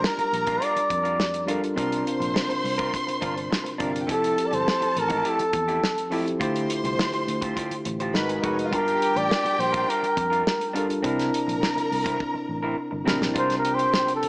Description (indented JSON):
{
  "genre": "lush 1970s-style soul",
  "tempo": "104 BPM",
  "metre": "4/4",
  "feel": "straight",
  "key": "G dorian",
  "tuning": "A4 = 440 Hz",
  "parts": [
    { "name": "breathy flugelhorn", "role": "melody", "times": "0.0-14.3 s", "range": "A4 to D5", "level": "-23 LUFS", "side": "equal", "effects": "none" },
    { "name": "warm studio violin section", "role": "second line", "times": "0.0-14.2 s", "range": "Ab3 to C6", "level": "-30 LUFS", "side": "equal", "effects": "none" },
    { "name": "tine electric piano", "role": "accompaniment", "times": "0.0-14.3 s", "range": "C3 to A5", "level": "-28 LUFS", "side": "equal", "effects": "none" },
    { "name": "electric guitar through a small old amp", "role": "riff", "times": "0.0-14.1 s", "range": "A3 to C5", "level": "-32 LUFS", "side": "right 1 dB", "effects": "none" },
    { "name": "warm soul drum kit", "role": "drums", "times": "0.0-14.3 s", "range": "hi-hat, kick drum, snare drum", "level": "-29 LUFS", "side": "equal", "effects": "none" },
    { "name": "vintage muted fingered electric bass", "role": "bass", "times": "0.2-14.3 s", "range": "F1 to F2", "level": "-34 LUFS", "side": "equal", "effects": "none" }
  ],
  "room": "moderate echo chamber reverb, RT60 1.8 s, small room reverb",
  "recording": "small speaker sound",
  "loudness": "-22 LUFS",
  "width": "side -27 dB against mid",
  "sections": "0.0-13.4 A section",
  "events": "drum fill 12.2-13.4",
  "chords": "0.0 Gm7; 1.8 C9sus4; 4.1 Fmaj9; 6.4 Dm11; 8.1 Abm7; 8.7 Gm7; 11.0 C7; 13.4 C9sus4"
}